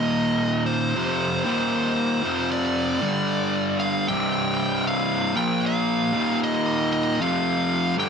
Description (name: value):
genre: metal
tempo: 77 BPM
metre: 4/4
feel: swing 63% on 8ths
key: unclear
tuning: A4 = 440 Hz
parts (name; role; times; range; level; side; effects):
- fuzz lead guitar; melody; 0.0-8.1 s; C5 to G5; -26 LUFS; equal; distortion, tape echo
- fuzz guitar; riff; 0.0-8.1 s; C2 to Bb3; -22 LUFS; equal; distortion
room: moderate large studio reverb, RT60 0.9 s, digital ambience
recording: none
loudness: -21 LUFS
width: side -6 dB against mid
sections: 0.0-8.1 A section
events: none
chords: 0.0 Eb5; 1.0 F5; 1.3 Eb5; 2.9 G5; 4.1 C5; 5.3 Bb5; 6.0 Eb5; 7.2 F5